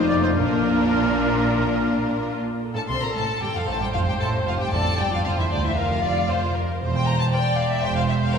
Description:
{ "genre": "quick classical-period movement for symphony orchestra", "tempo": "105-118 BPM", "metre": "4/4", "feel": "rubato", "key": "F major", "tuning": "A4 = 441 Hz", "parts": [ { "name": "rich studio violin section", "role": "melody", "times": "0.0-8.4 s", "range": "F4 to C6", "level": "-27 LUFS", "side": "left 4 dB", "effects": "none" }, { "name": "warm studio violin section", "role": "second line", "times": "0.0-8.4 s", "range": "D4 to D5", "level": "-32 LUFS", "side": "left 1 dB", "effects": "none" }, { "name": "rich studio viola section", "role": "accompaniment", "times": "0.0-8.4 s", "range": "A3 to D5", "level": "-26 LUFS", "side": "equal", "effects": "none" }, { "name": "mellow French horn section", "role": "sustained chords", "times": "0.0-2.3 s", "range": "A3 to Eb4", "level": "-26 LUFS", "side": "left 4 dB", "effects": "none" }, { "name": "rich studio double bass section", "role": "bass", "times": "0.0-8.3 s", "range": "E1 to D2", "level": "-26 LUFS", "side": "right 2 dB", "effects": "none" }, { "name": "warm studio cello section", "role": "bass", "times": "0.0-8.3 s", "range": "D2 to C3", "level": "-28 LUFS", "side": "right 2 dB", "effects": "none" }, { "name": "mellow oboe", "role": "second line", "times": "0.1-2.3 s", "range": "Bb4 to D5", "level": "-29 LUFS", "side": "right 1 dB", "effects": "none" }, { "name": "timpani", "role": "percussion", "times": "4.7-5.5 s", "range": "F2", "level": "-31 LUFS", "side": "equal", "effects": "none" } ], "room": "wet church reverb, RT60 3.9 s", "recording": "recorded in a church or concert hall", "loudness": "-20 LUFS", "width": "side -6 dB against mid", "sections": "0.0-2.6 A section; 2.6-8.4 B section", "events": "none", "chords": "0.4 Bb; 2.6 F; 4.7 G5/F; 6.8 C/E", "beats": "| 0.39 0.95 1.51 2.07 | 2.62 3.15 3.68 4.21 | 4.73 5.25 5.77 6.29 | 6.81 7.33 7.84 8.35" }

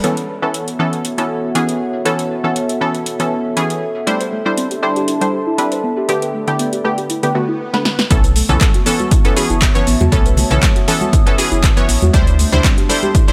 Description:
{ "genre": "deep house", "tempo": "119 BPM", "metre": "4/4", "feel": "swing 53% on 16ths", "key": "unclear", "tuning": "A4 = 438 Hz", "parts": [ { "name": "dark analog pad", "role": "sustained chords", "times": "0.3-13.3 s", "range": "A3 to D#6", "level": "-27 LUFS", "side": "equal", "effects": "chorus, phaser, sidechain pumping" }, { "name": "filtered dub chord stab", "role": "stabs", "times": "0.0-13.3 s", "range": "D3 to C#5", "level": "-21 LUFS", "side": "equal", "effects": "chorus, sidechain pumping, tape echo" }, { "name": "deep house drum kit", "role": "drums", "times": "0.0-13.3 s", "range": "handclaps, hi-hat, shaker, snare drum", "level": "-23 LUFS", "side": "equal", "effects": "overdrive" }, { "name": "warbly tape-like pad", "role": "texture", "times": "0.0-13.3 s", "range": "B3 to B5", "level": "-28 LUFS", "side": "equal", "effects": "chorus, built-in reverb, sidechain pumping" }, { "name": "soft round pluck", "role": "arpeggios", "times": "4.1-13.3 s", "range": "A3 to C5", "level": "-26 LUFS", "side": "equal", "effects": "chorus, sidechain pumping, tape echo" }, { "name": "swell", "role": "sound effects", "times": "7.2-8.1 s", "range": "none", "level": "-31 LUFS", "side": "equal", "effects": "none" }, { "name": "sub bass with octave", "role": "bass", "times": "8.1-12.6 s", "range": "F#1 to E2", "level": "-18 LUFS", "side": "equal", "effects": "tube saturation, sidechain pumping" }, { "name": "electronic kick drum", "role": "drums", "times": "8.1-13.3 s", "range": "none", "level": "-15 LUFS", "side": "equal", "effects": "none" }, { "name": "congas", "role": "percussion", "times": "8.5-13.1 s", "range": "none", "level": "-26 LUFS", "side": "equal", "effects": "none" } ], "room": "light reverb", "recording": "none", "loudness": "-16 LUFS", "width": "mono", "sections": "0.0-8.1 A section; 8.1-13.3 B section", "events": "swell 7.2-8.1; drum fill 7.7-8.1; drop 8.1-13.3", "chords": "0.0 B9sus4; 4.1 D9sus4; 5.8 A9sus4; 8.1 B9sus4; 12.1 D9sus4", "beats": "| 0.04 0.54 1.05 1.55 | 2.06 2.56 3.06 3.57 | 4.07 4.58 5.08 5.58 | 6.09 6.59 7.10 7.60 | 8.11 8.61 9.12 9.62 | 10.12 10.63 11.13 11.64 | 12.14 12.64 13.15" }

